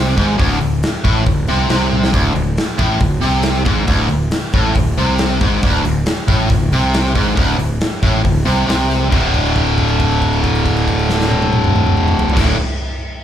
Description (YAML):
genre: blues rock power trio and southern rock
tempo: 137 BPM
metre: 4/4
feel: straight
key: unclear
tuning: A4 = 439 Hz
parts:
  - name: distorted electric guitar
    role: riff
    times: 0.0-12.6 s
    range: D2 to D3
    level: -16 LUFS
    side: equal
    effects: overdrive
  - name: fuzz fingered electric bass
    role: bass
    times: 0.0-12.6 s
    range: D1 to C2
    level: -18 LUFS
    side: equal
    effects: overdrive
  - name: big rock drum kit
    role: drums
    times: 0.2-12.5 s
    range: crash cymbal, hi-hat, kick drum, snare drum, toms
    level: -18 LUFS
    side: equal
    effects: none
room: studio reverb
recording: live gig heard through the venue's PA, club ambience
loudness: -13 LUFS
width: side -10 dB against mid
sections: 0.0-9.1 A section; 9.1-12.6 B section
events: drum fill 1.9; held note 9.1-12.4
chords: 0.0 D5